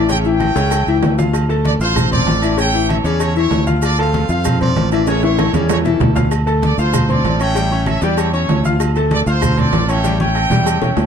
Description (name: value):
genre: latin, salsa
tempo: 193 BPM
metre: 4/4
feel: straight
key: D minor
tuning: A4 = 440 Hz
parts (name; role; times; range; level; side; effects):
- bright trumpet section; melody; 0.0-11.1 s; C#4 to G5; -21 LUFS; right 2 dB; none
- bright grand piano; accompaniment; 0.0-11.1 s; C#3 to F6; -19 LUFS; left 5 dB; none
- fingered electric bass; bass; 0.0-11.1 s; A1 to F2; -17 LUFS; right 1 dB; none
- agogo bells and timbales; percussion; 0.1-11.1 s; none; -24 LUFS; right 8 dB; none
- congas; percussion; 0.1-10.9 s; none; -21 LUFS; equal; none
- cowbell and bongos; percussion; 0.1-11.1 s; none; -27 LUFS; left 8 dB; none
- maracas; percussion; 0.1-11.1 s; none; -34 LUFS; right 7 dB; none
- claves; percussion; 0.4-10.8 s; none; -35 LUFS; right 7 dB; none
room: moderate studio reverb, RT60 0.7 s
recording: dark, warm production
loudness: -13 LUFS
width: side -7 dB against mid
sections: 0.0-6.3 A section; 6.3-11.1 A section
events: drum fill 0.6-1.3, 5.1-6.3, 10.0-11.1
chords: 0.1 A7; 1.3 Dm7; 2.6 A7; 3.8 Dm7; 5.1 A7; 6.3 Dm7; 7.6 A7; 8.8 Dm7; 10.0 A7